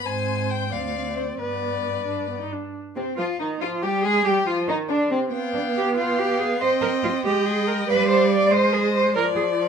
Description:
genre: quick classical-period movement for string quartet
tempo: 93 BPM (dotted quarters)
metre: 6/8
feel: rubato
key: C minor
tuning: A4 = 439 Hz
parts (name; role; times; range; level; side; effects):
- clear violin; melody; 0.0-9.7 s; C4 to Ab5; -29 LUFS; left 10 dB; none
- warm violin; second line; 0.0-9.7 s; C4 to F5; -28 LUFS; left 4 dB; none
- warm viola; accompaniment; 0.0-9.7 s; C3 to Eb4; -26 LUFS; right 3 dB; none
- warm cello; bass; 0.1-9.4 s; D2 to D5; -24 LUFS; right 3 dB; none
room: light reverb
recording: minimal, uncompressed stereo recording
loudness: -20 LUFS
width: side -7 dB against mid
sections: 0.0-2.7 A section; 2.7-9.7 B section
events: none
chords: 0.1 Ab; 0.7 Dm7; 1.4 G; 2.7 Cm; 4.0 Dm7b5; 5.3 G7/B; 6.6 Cm; 7.9 G7; 8.5 Ab; 9.1 Ddim/F

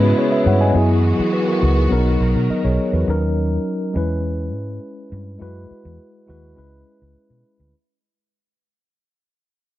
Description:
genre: soul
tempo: 103 BPM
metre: 4/4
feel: straight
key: C# dorian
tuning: A4 = 440 Hz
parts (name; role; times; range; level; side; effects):
- mellow tine electric piano; accompaniment; 0.0-7.8 s; F#3 to G#5; -20 LUFS; left 1 dB; medium stereo tremolo
- warm studio string section; sustained chords; 0.0-3.1 s; C#3 to A#4; -24 LUFS; right 1 dB; none
- vintage muted fingered electric bass; bass; 0.0-7.7 s; B1 to B2; -19 LUFS; equal; none
room: light reverb, small room ambience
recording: dark, warm production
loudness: -16 LUFS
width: side -15 dB against mid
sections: 0.0-7.7 A section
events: fade-out 0.0-7.7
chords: 0.0 C#m7; 0.8 F#9sus4; 1.9 Bmaj7; 3.1 D#m7; 4.0 C#m7/E; 5.4 F#9sus4; 6.6 C#m7

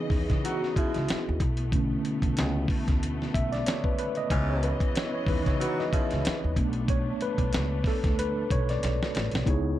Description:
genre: R&B, neo-soul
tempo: 93 BPM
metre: 4/4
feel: swing 56% on 16ths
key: unclear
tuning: A4 = 441 Hz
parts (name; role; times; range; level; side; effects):
- mellow tine electric piano; accompaniment; 0.0-9.8 s; D3 to E5; -30 LUFS; equal; medium stereo tremolo, plate reverb
- muted studio string section; sustained chords; 0.0-9.4 s; B2 to D#5; -36 LUFS; left 1 dB; none
- upright bass; bass; 0.1-9.7 s; A1 to C#3; -30 LUFS; equal; none
- dusty soul sampler-style drum kit; drums; 0.1-9.6 s; hi-hat, kick drum, snare drum; -28 LUFS; equal; none
- bright saxophone section; stabs; 0.4-6.4 s; G#2 to F#4; -34 LUFS; left 1 dB; slapback echo, plate reverb
room: light reverb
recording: dark, warm production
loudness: -25 LUFS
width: side -13 dB against mid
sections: 0.0-9.5 A section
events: tine electric piano solo 0.0-9.5; drum fill 8.8-9.5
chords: 0.0 C#m9; 1.4 Bm9; 4.3 C#m9; 6.6 Bm9

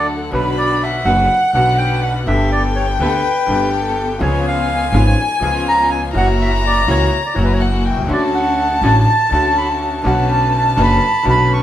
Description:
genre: tango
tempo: 124 BPM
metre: 4/4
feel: rubato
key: B minor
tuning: A4 = 441 Hz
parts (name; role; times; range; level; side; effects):
- bandoneon; melody; 0.0-11.6 s; B4 to C#6; -18 LUFS; right 1 dB; none
- warm violin; second line; 0.0-11.6 s; F#5 to B5; -20 LUFS; left 3 dB; none
- bright concert grand piano; accompaniment; 0.0-11.6 s; F#1 to A4; -21 LUFS; left 1 dB; none
- warm studio string section; stabs; 0.0-11.6 s; A#3 to B4; -24 LUFS; left 1 dB; none
- upright bass; bass; 0.0-11.6 s; F#1 to D2; -18 LUFS; equal; none
room: moderate studio reverb, RT60 0.5 s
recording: band playing live in one room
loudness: -13 LUFS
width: side -12 dB against mid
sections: 0.3-11.6 A section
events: none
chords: 0.3 Bm; 2.3 Gadd9; 4.2 C#7; 6.1 F#7; 8.1 Dmaj7; 10.0 Bmadd9

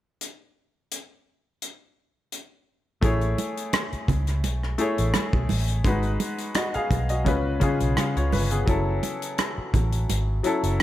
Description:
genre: lush 1970s-style soul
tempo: 85 BPM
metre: 4/4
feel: swing 54% on 16ths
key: A major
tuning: A4 = 440 Hz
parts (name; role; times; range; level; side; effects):
- tight funk drum kit; drums; 0.2-10.8 s; hi-hat, kick drum, rim click; -27 LUFS; equal; none
- clear grand piano; accompaniment; 3.0-10.8 s; C#3 to F5; -26 LUFS; left 2 dB; none
- vintage muted fingered electric bass; bass; 3.0-10.8 s; F#1 to C#2; -25 LUFS; equal; none
- congas; percussion; 3.0-10.3 s; none; -32 LUFS; right 6 dB; none
room: light reverb, small room ambience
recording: none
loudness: -22 LUFS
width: side -14 dB against mid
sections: 0.2-3.0 A section; 3.0-10.8 B section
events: none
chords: 0.2 N.C.; 3.0 Amaj7; 5.9 G#m7; 7.3 C#7; 8.7 F#m7

